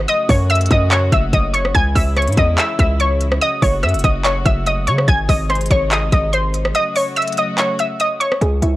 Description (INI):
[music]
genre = hip hop, trap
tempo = 144 BPM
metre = 4/4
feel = half-time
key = unclear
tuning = A4 = 439 Hz
[part]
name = warbly dusty pluck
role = melody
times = 0.0-8.8 s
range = E4 to G#6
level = -18 LUFS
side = equal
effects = chorus, low-pass filter, tape echo
[part]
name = warm chamber string section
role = sustained chords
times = 0.0-8.4 s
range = B#2 to F#4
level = -28 LUFS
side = left 1 dB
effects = none
[part]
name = hard-hitting 808-style bass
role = bass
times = 0.0-8.8 s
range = F#1 to C#3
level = -18 LUFS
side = equal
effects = none
[part]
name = trap drum kit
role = drums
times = 0.1-8.7 s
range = handclaps, hi-hat, kick drum, rim click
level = -18 LUFS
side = equal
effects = none
[sound]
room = little or no reverb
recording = dry, gritty hardware recording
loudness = -14 LUFS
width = side -16 dB against mid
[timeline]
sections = 0.0-8.4 A section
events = kick muted 6.7-8.4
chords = 0.1 F#m; 1.7 C#m; 3.4 F#m; 5.1 G#; 6.7 F#m